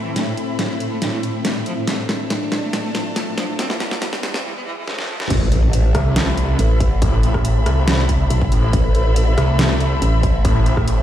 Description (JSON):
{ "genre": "heavy wobble dubstep", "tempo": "140 BPM", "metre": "4/4", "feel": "half-time", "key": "A minor", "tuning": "A4 = 445 Hz", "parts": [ { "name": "supersaw pad", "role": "sustained chords", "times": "0.0-11.0 s", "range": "A2 to E5", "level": "-27 LUFS", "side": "left 1 dB", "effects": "phaser, sidechain pumping, low-pass filter" }, { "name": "riser and impact", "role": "sound effects", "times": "2.0-7.0 s", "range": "none", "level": "-28 LUFS", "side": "equal", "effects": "none" }, { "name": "muted studio string section", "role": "texture", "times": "0.0-11.0 s", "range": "A4 to B5", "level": "-29 LUFS", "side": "left 2 dB", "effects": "sidechain pumping" }, { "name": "clear cello", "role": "melody", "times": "0.1-5.3 s", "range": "A2 to C4", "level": "-28 LUFS", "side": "left 1 dB", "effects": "low-pass filter, dub echo" }, { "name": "dubstep drum kit", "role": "drums", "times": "0.2-11.0 s", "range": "crash cymbal, hi-hat, rim click, snare drum", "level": "-23 LUFS", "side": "equal", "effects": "overdrive" }, { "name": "growl bass", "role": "bass", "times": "5.3-10.4 s", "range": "A1 to B1", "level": "-16 LUFS", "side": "equal", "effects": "chorus, overdrive" }, { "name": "electronic kick drum", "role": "drums", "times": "5.3-10.9 s", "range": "none", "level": "-19 LUFS", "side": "equal", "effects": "overdrive" }, { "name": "snarling distorted saw bass", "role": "bass", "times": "5.9-11.0 s", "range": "A1 to C2", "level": "-17 LUFS", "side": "equal", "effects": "distortion, overdrive" } ], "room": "little or no reverb", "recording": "played on a big sound system in a bare room, stone room reverb, high-pass filter", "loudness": "-16 LUFS", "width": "side -11 dB against mid", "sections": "0.0-5.3 A section; 5.3-11.0 B section", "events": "build-up 0.0-5.3; drum fill 0.0-4.4, 4.9-5.3; filter sweep on cello 0.0-5.3; filter sweep 0.0-5.3; riser 2.0-5.3; break 4.4-5.3; drop 5.3-11.0; impact 5.3-7.0", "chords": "0.0 Am", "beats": "| 0.16 0.59 1.02 1.45 | 1.88 2.30 2.73 3.16 | 3.59 4.02 4.45 4.88 | 5.30 5.73 6.16 6.59 | 7.02 7.45 7.88 8.30 | 8.73 9.16 9.59 10.02 | 10.45 10.88" }